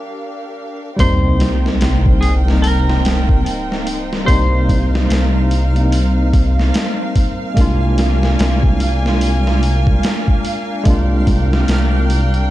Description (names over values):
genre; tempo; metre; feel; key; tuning
trip hop; 73 BPM; 4/4; swing 59% on 16ths; C minor; A4 = 435 Hz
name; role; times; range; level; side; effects
dark studio string section; sustained chords; 0.0-12.5 s; D4 to Ab5; -25 LUFS; right 1 dB; none
clean electric guitar; melody; 1.0-5.9 s; Ab4 to C5; -24 LUFS; equal; tape echo
tine electric piano; accompaniment; 1.0-12.3 s; G3 to F4; -21 LUFS; equal; overdrive, tremolo, tape echo
dark detuned saw bass; bass; 1.0-12.5 s; C2; -15 LUFS; equal; none
boom bap sampler-style drum kit; drums; 1.0-12.5 s; hi-hat, kick drum, snare drum; -18 LUFS; equal; none
sub drop; sound effects; 1.0-4.3 s; none; -22 LUFS; equal; none
backwards swelling texture; texture; 2.0-12.5 s; F5; -30 LUFS; right 1 dB; built-in reverb
room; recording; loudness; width
digital ambience; dark, warm production; -13 LUFS; side -15 dB against mid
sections
0.0-1.0 A section; 1.0-12.5 B section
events
break 0.0-1.0; impact 1.0-4.3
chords
0.0 Gm7; 1.0 Cm7; 7.6 Bb7/C